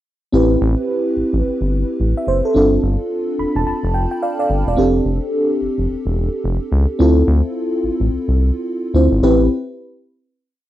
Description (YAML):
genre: R&B, new jack swing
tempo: 108 BPM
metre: 4/4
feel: swing 61% on 16ths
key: A minor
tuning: A4 = 440 Hz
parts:
  - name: FM electric piano with soft pad layer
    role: accompaniment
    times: 0.3-9.5 s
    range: C4 to B5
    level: -17 LUFS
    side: equal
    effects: chorus
  - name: round analog bass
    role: bass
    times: 0.3-9.5 s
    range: E1 to D2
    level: -17 LUFS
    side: equal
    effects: none
room: light reverb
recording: home recording on cassette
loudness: -15 LUFS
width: side -13 dB against mid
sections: 0.3-9.2 chorus; 9.2-10.7 final chord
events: FM electric piano fill 3.1-4.8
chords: 0.3 Am7; 2.6 G7sus4; 4.8 F6; 7.0 Dm7; 9.2 Am7